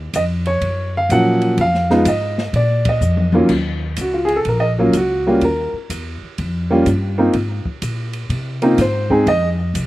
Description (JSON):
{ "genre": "jazz piano trio", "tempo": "125 BPM", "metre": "4/4", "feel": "swing 66% on 8ths", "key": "Eb minor", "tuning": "A4 = 439 Hz", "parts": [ { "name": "upright bass", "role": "bass", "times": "0.0-9.9 s", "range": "Bb1 to C3", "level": "-20 LUFS", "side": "equal", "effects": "none" }, { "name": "open jazz drum kit", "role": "drums", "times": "0.1-9.9 s", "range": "crash cymbal, hi-hat, kick drum, ride cymbal, snare drum, toms", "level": "-28 LUFS", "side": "equal", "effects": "none" }, { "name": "warm baby grand piano", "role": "melody", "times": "0.2-9.5 s", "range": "Eb2 to Gb5", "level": "-16 LUFS", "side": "equal", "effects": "none" } ], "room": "little or no reverb", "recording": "recorded outdoors, with no room sound", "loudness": "-15 LUFS", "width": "side -17 dB against mid", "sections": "0.0-3.5 A section; 3.5-9.9 B section", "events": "band accent 2.8; drum fill 3.0-3.5; grand piano solo 3.5-9.9", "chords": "0.0 Ebm7 (rootless); 1.6 Fm7; 2.5 Bb5; 3.5 Ebm7; 5.4 Eb; 7.3 Abadd9; 9.3 F5" }